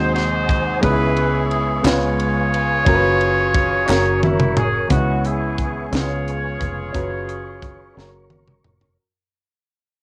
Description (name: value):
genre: slow gospel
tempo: 59 BPM (dotted quarters)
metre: 6/8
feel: straight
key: unclear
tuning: A4 = 440 Hz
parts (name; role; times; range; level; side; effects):
- warm horn section; melody; 0.0-8.3 s; F#3 to C#5; -24 LUFS; equal; cassette tape
- warm grand piano; accompaniment; 0.0-9.0 s; B#2 to B#4; -25 LUFS; equal; cassette tape
- mellow tonewheel organ; sustained chords; 0.0-9.0 s; A#4 to D#6; -32 LUFS; equal; chorus vibrato, fast rotary speaker, cassette tape
- fingered electric bass; bass; 0.0-9.0 s; E#1 to D#2; -26 LUFS; equal; none
- tight funk drum kit; drums; 0.2-9.0 s; hi-hat, kick drum, ride cymbal, snare drum, toms; -24 LUFS; equal; cassette tape
- group handclap; percussion; 1.9-4.2 s; none; -28 LUFS; equal; none
room: moderate booth ambience, RT60 0.2 s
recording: home recording on cassette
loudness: -19 LUFS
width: mono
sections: 0.0-4.9 A section; 4.9-9.0 B section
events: drum fill 3.9-4.9, 8.0-9.0; fade-out 4.9-9.0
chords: 0.0 G#7; 0.8 C#m7; 1.8 C#7; 2.9 F#sus4; 3.9 F#; 4.9 C#m7; 5.9 C#7; 6.9 F#sus4; 8.0 F#